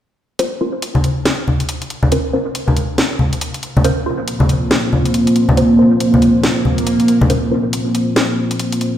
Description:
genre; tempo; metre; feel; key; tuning
deep dubstep; 139 BPM; 4/4; swing 60% on 16ths, half-time; Bb minor; A4 = 441 Hz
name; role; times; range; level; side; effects
filtered dub chord stab; stabs; 0.4-7.7 s; Db4 to C5; -22 LUFS; right 1 dB; phaser, analog chorus, dub echo
garage drum kit; drums; 0.4-8.9 s; hi-hat, snare drum; -20 LUFS; left 1 dB; none
congas; percussion; 0.9-7.3 s; none; -17 LUFS; left 1 dB; dub echo
dark analog pad; sustained chords; 4.3-9.0 s; Bb3 to C5; -14 LUFS; equal; chorus
swell; sound effects; 6.6-7.3 s; none; -19 LUFS; right 2 dB; none
room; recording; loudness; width
wet echo chamber reverb, RT60 1.9 s, digital ambience; played on a big sound system in a bare room, large studio reverb; -13 LUFS; side -11 dB against mid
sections
0.4-7.3 A section; 7.3-9.0 B section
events
swell 6.6-7.3; build-up 7.3-9.0; filter sweep 7.3-9.0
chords
0.4 Bbmadd9

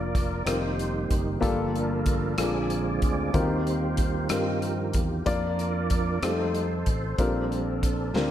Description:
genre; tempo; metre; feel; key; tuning
slow gospel; 62 BPM (dotted quarters); 6/8; straight; Bb major; A4 = 439 Hz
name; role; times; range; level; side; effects
warm upright piano; accompaniment; 0.0-8.3 s; G2 to D5; -30 LUFS; left 3 dB; none
tonewheel organ; sustained chords; 0.0-8.3 s; D3 to D5; -30 LUFS; right 3 dB; slow rotary speaker, overdrive, chorus vibrato
fingered electric bass; bass; 0.0-8.3 s; F1 to G2; -30 LUFS; equal; none
warm soul drum kit; drums; 0.1-8.3 s; hi-hat, kick drum, rim click, snare drum; -29 LUFS; equal; none
room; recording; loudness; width
moderate lush hall reverb, RT60 2.0 s, small room ambience; dreamy mix soaked in reverb; -24 LUFS; side -11 dB against mid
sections
0.0-8.3 A section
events
tonewheel organ solo 0.0-8.3; drum fill 8.2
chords
0.5 F9sus4; 1.4 Gm9; 2.4 Bb7; 3.3 Eb69; 5.3 Bb/F; 6.2 F9; 7.2 Bb69

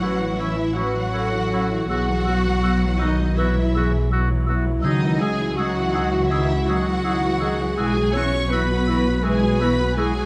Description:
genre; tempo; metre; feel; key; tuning
cinematic, emotional film score for orchestra; 82 BPM; 4/4; rubato; C# minor; A4 = 440 Hz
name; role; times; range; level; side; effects
dark studio violin section; melody; 0.0-10.3 s; D#5 to C#6; -33 LUFS; equal; none
clear oboe; second line; 0.0-10.1 s; E4 to G#4; -34 LUFS; equal; none
mellow hollow silver concert flute; second line; 0.0-10.1 s; C#6 to E6; -36 LUFS; equal; none
rich studio violin section; second line; 0.0-10.3 s; D#4 to C#5; -34 LUFS; equal; none
warm clarinet; second line; 0.0-10.3 s; D#4 to C#5; -32 LUFS; equal; none
dark studio viola section; accompaniment; 0.0-10.3 s; D#3 to F#4; -31 LUFS; equal; none
dark French horn section; sustained chords; 0.0-10.3 s; E4 to B4; -31 LUFS; equal; none
concert harp; arpeggios; 0.0-10.3 s; A2 to C#6; -32 LUFS; equal; none
warm studio cello section; bass; 0.0-10.3 s; D#3 to C#4; -28 LUFS; equal; none
warm studio double bass section; bass; 0.0-10.3 s; A1 to C#2; -27 LUFS; equal; none
timpani; percussion; 4.8-5.9 s; C#3; -30 LUFS; equal; none
room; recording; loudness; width
light reverb; close, detailed microphones; -21 LUFS; mono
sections
0.0-10.3 A section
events
none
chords
0.0 A6; 1.9 Bsus4; 4.8 C#madd9; 7.8 Eadd9/B

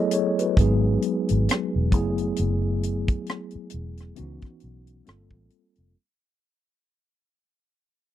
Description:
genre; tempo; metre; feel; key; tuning
R&B, neo-soul; 67 BPM; 4/4; swing 57% on 16ths; F# dorian; A4 = 440 Hz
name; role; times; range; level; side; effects
mellow tine electric piano; accompaniment; 0.0-6.0 s; D#3 to D#5; -25 LUFS; left 1 dB; medium stereo tremolo
tight funk drum kit; drums; 0.1-5.9 s; hi-hat, kick drum, rim click; -23 LUFS; equal; none
vintage muted fingered electric bass; bass; 0.6-5.9 s; E1 to C#2; -25 LUFS; equal; none
room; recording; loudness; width
little or no reverb; dry, close 1970s-style studio recording; -21 LUFS; side -12 dB against mid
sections
0.0-6.0 A section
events
fade-out 0.0-6.0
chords
0.0 F#m11; 0.6 G#m7; 1.9 F#m11; 4.2 C#m11; 5.1 Gm11

